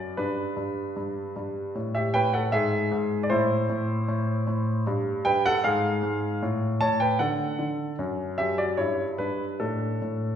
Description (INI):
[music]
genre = classical-period piano sonatina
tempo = 77 BPM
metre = 2/4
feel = straight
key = unclear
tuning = A4 = 444 Hz
[part]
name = warm grand piano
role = solo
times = 0.0-10.4 s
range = F#2 to A5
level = -24 LUFS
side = equal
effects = none
[sound]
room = wet recital hall reverb, RT60 1.3 s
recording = heard from further back in the room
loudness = -24 LUFS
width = side -9 dB against mid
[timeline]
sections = 0.0-10.4 A section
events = none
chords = 0.2 G; 1.8 Gmaj13/A; 2.5 N.C.; 3.3 Am; 4.9 Gmaj9; 5.6 N.C.; 6.4 A; 7.2 D; 8.0 Em9/F#; 8.8 Em7/G; 9.6 Asus4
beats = | 0.18 0.96 | 1.75 2.53 | 3.31 4.08 | 4.86 5.64 | 6.41 7.19 | 7.98 8.79 | 9.60